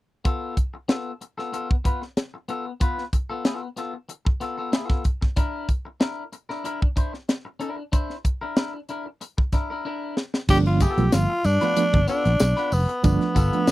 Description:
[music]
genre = funk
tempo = 94 BPM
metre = 4/4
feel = straight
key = unclear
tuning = A4 = 440 Hz
[part]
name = clean electric guitar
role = accompaniment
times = 0.2-13.7 s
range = B3 to C5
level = -30 LUFS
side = left 3 dB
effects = none
[part]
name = tight funk drum kit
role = drums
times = 0.3-13.7 s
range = crash cymbal, hi-hat, kick drum, snare drum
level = -22 LUFS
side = equal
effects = none
[part]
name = raspy tenor saxophone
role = melody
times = 10.5-13.7 s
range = B3 to G4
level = -24 LUFS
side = left 1 dB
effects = none
[part]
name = reed electric piano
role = stabs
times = 10.5-13.7 s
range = F3 to F4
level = -24 LUFS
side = right 5 dB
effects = overdrive, fast tremolo
[part]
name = fingered electric bass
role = bass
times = 10.5-13.7 s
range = F1 to G2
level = -21 LUFS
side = equal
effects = tube saturation
[part]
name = tambourine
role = percussion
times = 10.5-13.7 s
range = none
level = -38 LUFS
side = left 3 dB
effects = none
[sound]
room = little or no reverb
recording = dry, close 1970s-style studio recording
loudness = -21 LUFS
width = side -17 dB against mid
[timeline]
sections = 0.2-10.5 A section; 10.5-13.7 B section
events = drum fill 9.8-10.5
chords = 0.2 F; 5.4 C9 (rootless); 10.5 G9

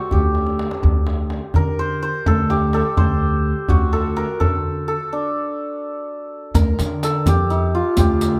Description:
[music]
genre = Persian modal ensemble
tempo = 84 BPM (dotted quarters)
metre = 6/8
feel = straight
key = D dastgah homayun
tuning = A4 = 440 Hz
[part]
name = santur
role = melody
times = 0.0-8.4 s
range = D4 to D5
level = -24 LUFS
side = equal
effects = none
[part]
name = upright bass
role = bass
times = 0.1-8.4 s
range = D2 to D3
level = -22 LUFS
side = equal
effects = none
[part]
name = tombak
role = percussion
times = 0.1-8.3 s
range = none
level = -23 LUFS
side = equal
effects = none
[part]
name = riq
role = percussion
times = 6.5-8.3 s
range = none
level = -31 LUFS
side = equal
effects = none
[sound]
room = light reverb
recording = none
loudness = -19 LUFS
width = mono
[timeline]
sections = 0.0-6.5 A section; 6.5-8.4 B section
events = drum fill 0.4-0.8; stop 5.1-6.5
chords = none

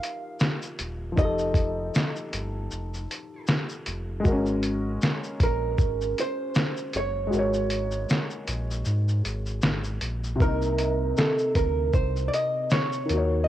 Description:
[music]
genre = lo-fi hip hop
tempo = 78 BPM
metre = 4/4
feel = swing 57% on 16ths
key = unclear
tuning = A4 = 440 Hz
[part]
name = vintage hollow-body jazz guitar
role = melody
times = 0.0-13.5 s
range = A4 to F5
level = -28 LUFS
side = right 2 dB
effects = cassette tape, analog delay
[part]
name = dark upright piano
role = accompaniment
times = 0.0-13.5 s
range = C3 to Eb5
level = -30 LUFS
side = left 1 dB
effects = cassette tape
[part]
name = lo-fi sampler-style drum kit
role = drums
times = 0.0-13.3 s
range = hi-hat, kick drum, shaker, snare drum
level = -25 LUFS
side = equal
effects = overdrive, cassette tape
[part]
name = sub bass with octave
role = bass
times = 0.8-13.5 s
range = Eb1 to Ab2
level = -29 LUFS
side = equal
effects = none
[sound]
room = light reverb, digital ambience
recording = home recording on cassette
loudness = -24 LUFS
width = side -13 dB against mid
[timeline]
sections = 0.0-10.4 A section; 10.4-13.5 B section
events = kick muted 7.3-10.4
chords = 0.0 F9sus4; 4.3 Ab9sus4; 10.4 Cm7

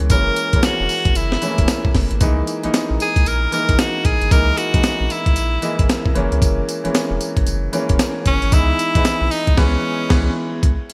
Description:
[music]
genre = R&B, new jack swing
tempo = 114 BPM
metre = 4/4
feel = swing 62% on 16ths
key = C# dorian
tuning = A4 = 442 Hz
[part]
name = clear grand piano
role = accompaniment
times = 0.0-10.6 s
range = E3 to D#5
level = -25 LUFS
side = equal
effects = none
[part]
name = round analog bass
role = bass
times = 0.0-10.8 s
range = E1 to C#2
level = -23 LUFS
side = equal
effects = none
[part]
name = breakbeat sampler-style drum kit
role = drums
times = 0.0-10.9 s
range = crash cymbal, hi-hat, kick drum, snare drum, tambourine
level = -21 LUFS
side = equal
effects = gated reverb
[part]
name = edgy tenor saxophone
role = melody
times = 0.1-10.4 s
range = C#4 to A#4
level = -24 LUFS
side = equal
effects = delay
[sound]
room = light reverb, digital ambience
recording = bright 1980s-style digital production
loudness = -18 LUFS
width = mono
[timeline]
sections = 0.0-10.6 A section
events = silent gap 9.6-10.6; band accent 9.6-10.6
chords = 0.0 F#7; 2.2 C#m69; 6.2 F#7; 8.5 C#m7

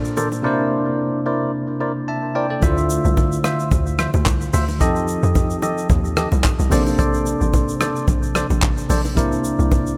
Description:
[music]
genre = amapiano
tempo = 110 BPM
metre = 4/4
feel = swing 55% on 16ths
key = D minor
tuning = A4 = 440 Hz
[part]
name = bell-like tine electric piano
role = accompaniment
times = 0.0-10.0 s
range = Bb2 to A5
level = -24 LUFS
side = equal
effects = none
[part]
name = warm soul drum kit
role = drums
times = 0.0-10.0 s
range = handclaps, hi-hat, kick drum, rim click, shaker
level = -24 LUFS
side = equal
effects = none
[part]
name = percussive organ stab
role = stabs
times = 0.2-9.9 s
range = E4 to E5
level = -27 LUFS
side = equal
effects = chorus, digital delay
[part]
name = bongos and congas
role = percussion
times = 0.2-9.9 s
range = none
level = -31 LUFS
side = equal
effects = none
[part]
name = tight log drum bass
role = bass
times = 2.6-9.9 s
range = A1 to F2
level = -23 LUFS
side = equal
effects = none
[sound]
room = light reverb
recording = none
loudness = -19 LUFS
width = mono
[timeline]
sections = 0.0-2.6 A section; 2.6-10.0 B section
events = drop 2.6-10.0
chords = 0.4 C9; 2.6 Dm9; 4.8 F9; 6.7 Bbmaj9; 9.2 C9

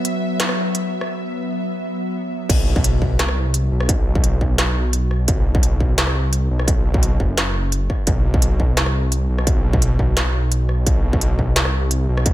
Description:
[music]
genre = half-time drum and bass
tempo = 172 BPM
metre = 4/4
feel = half-time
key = unclear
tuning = A4 = 440 Hz
[part]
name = bowed-like drone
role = sustained chords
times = 0.0-2.5 s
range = F#3 to E5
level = -24 LUFS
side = equal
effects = built-in reverb, sidechain pumping
[part]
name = industrial drum kit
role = drums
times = 0.0-12.3 s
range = crash cymbal, hi-hat, rim click, snare drum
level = -22 LUFS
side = equal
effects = none
[part]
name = dark detuned saw bass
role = bass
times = 2.5-12.3 s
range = F#1 to C2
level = -18 LUFS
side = equal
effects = none
[part]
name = electronic kick drum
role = drums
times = 2.5-12.3 s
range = none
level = -19 LUFS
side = equal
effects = distortion
[sound]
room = little or no reverb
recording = none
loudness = -16 LUFS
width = side -14 dB against mid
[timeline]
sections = 0.0-2.5 A section; 2.5-12.3 B section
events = build-up 0.0-2.5; break 1.1-2.5; drop 2.5-12.3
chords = 0.0 B5

